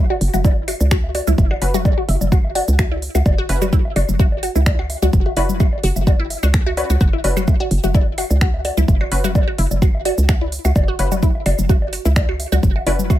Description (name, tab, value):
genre	minimal techno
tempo	128 BPM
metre	4/4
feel	swing 54% on 16ths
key	unclear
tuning	A4 = 441 Hz
part	hollow knocking FM bass	bass	0.0-13.2 s	F#1 to C#2	-19 LUFS	equal	sidechain pumping
part	resonant blip pluck	riff	0.1-13.1 s	E4 to F#4	-25 LUFS	equal	phaser, sidechain pumping, digital delay
part	bongos, congas and woodblock	percussion	0.1-13.2 s	none	-25 LUFS	left 4 dB	digital delay
part	minimal click drum kit	drums	0.2-13.2 s	cabasa, finger snaps, hi-hat	-27 LUFS	right 2 dB	overdrive
part	electronic kick drum	drums	0.4-13.2 s	none	-16 LUFS	equal	overdrive
part	filtered dub chord stab	stabs	1.6-13.0 s	C#4 to B4	-25 LUFS	left 2 dB	chorus, digital delay
room	little or no reverb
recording	none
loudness	-15 LUFS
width	side -13 dB against mid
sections	0.0-13.2 A section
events	none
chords	0.0 F#sus4